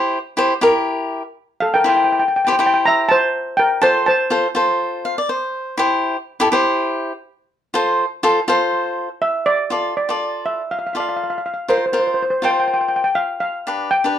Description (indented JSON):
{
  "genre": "calypso",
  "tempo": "122 BPM",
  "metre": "4/4",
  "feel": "swing 53% on 16ths",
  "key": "F major",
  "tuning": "A4 = 439 Hz",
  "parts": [
    { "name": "cavaquinho", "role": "accompaniment", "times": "0.0-14.2 s", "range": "D4 to F5", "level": "-18 LUFS", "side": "equal", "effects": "none" },
    { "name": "steel pan", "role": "melody", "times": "1.6-4.5, 9.2-14.2 s", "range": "A4 to Bb5", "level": "-16 LUFS", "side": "equal", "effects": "none" }
  ],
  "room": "moderate studio reverb, RT60 0.6 s",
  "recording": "dark, warm production",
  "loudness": "-16 LUFS",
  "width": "side -10 dB against mid",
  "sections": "0.0-9.7 A section; 9.7-14.2 B section",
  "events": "cavaquinho fill 4.8-5.8",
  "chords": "0.0 C; 3.8 F; 5.8 C; 7.7 F; 9.7 Dm; 11.7 Bbsus2; 13.7 G"
}